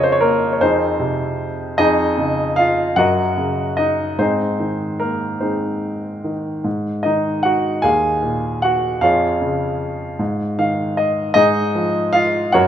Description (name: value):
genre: classical, lyrical solo piano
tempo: 51 BPM (dotted quarters)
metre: 6/8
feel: rubato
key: Db major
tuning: A4 = 440 Hz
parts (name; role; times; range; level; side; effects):
- warm grand piano; solo; 0.0-12.7 s; Eb2 to Ab5; -16 LUFS; equal; none
room: moderate recital hall reverb, RT60 1.7 s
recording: minimal, uncompressed stereo recording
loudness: -16 LUFS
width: side -10 dB against mid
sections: 0.0-12.7 A section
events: grand piano fill 10.2-11.4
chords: 0.0 Db/F; 0.6 Fm7; 1.8 Db/F; 3.0 Gb6; 4.2 Ab; 6.7 Ab5; 7.8 Ebmadd9; 9.0 Db/F; 10.2 Ab5; 11.4 Fm7/Ab